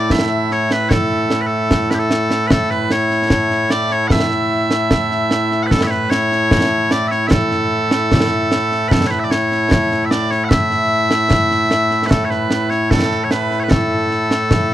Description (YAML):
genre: scottish traditional, Scottish pipe music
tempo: 75 BPM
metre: 2/4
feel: straight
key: A major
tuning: A4 = 440 Hz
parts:
  - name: loud bright bagpipes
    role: melody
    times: 0.0-14.7 s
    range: A2 to F#5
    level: -15 LUFS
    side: equal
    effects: none
  - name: concert snare drum and concert bass drum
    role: drums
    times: 0.1-14.7 s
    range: none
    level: -18 LUFS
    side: equal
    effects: none
room: little or no reverb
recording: dry, close 1970s-style studio recording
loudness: -14 LUFS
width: side -12 dB against mid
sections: 0.0-2.5 A section; 2.5-14.7 B section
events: none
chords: none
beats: 0.11 | 0.91 1.71 | 2.51 3.31 | 4.11 4.91 | 5.71 6.51 | 7.31 8.11 | 8.91 9.71 | 10.51 11.31 | 12.11 12.91 | 13.71 14.51